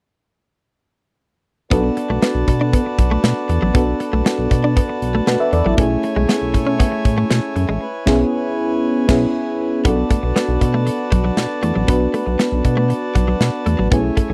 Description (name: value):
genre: 1980s-style pop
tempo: 118 BPM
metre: 4/4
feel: straight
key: B dorian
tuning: A4 = 440 Hz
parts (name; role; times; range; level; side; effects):
- mellow FM electric piano; accompaniment; 1.7-14.3 s; A3 to E5; -22 LUFS; equal; chorus
- pedal harmonium; sustained chords; 1.7-14.3 s; A3 to A5; -27 LUFS; equal; none
- direct-recorded clean electric guitar; riff; 1.7-14.3 s; F#3 to D4; -25 LUFS; equal; analog chorus
- chorused synth bass; bass; 1.7-14.3 s; A1 to B2; -22 LUFS; equal; none
- modern studio drum kit; drums; 1.7-14.3 s; crash cymbal, hi-hat, kick drum, snare drum; -19 LUFS; equal; none
room: little or no reverb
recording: dry, close 1970s-style studio recording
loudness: -18 LUFS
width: mono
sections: 1.7-9.9 A section; 9.9-14.3 B section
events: band accent 7.8-9.9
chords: 1.7 Bm7; 5.8 Amaj7/B; 7.8 C#m7/B; 9.9 Bm7